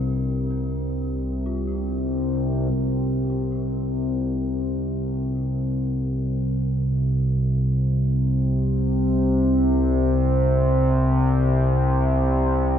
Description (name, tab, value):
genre	dark ambient drone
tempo	free time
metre	none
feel	none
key	unclear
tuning	A4 = 440 Hz
part	dark detuned synth bell	arpeggios	0.0-8.8 s	D4 to G4	-42 LUFS	left 2 dB	chorus, phaser, tape echo
part	analog drone	drone	0.0-12.8 s	C2 to C3	-20 LUFS	equal	chorus
part	quartz singing bowl	texture	0.0-2.8 s	Bb4	-44 LUFS	right 5 dB	none
room	moderate huge ambient reverb, RT60 7.6 s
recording	in a vast, echoing space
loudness	-20 LUFS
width	side -9 dB against mid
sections	0.0-2.7 A section; 2.7-12.8 B section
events	none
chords	0.0 Csus2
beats	free time